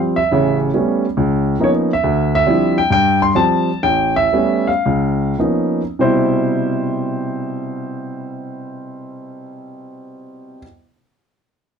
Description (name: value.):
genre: solo jazz.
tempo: 97-139 BPM.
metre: 4/4.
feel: swing 67% on 8ths.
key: C major.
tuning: A4 = 440 Hz.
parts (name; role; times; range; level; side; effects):
warm grand piano; solo; 0.0-10.6 s; A1 to C6; -16 LUFS; equal; none.
room: light reverb.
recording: dark, warm production.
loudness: -14 LUFS.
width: side -6 dB against mid.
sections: 0.0-6.0 A section; 6.0-10.9 B section.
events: slowing down 2.0-6.0.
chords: 0.3 A9; 1.2 Db13; 2.0 Dm11; 2.9 G7sus4; 3.8 A9; 4.8 Db13; 6.0 Cmaj7.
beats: | 0.30 0.73 1.16 1.59 | 2.03 2.46 2.90 3.36 | 3.83 4.32 4.84 5.39 | 5.99 6.60 7.22 7.84 | 8.45 9.07 9.69 10.31.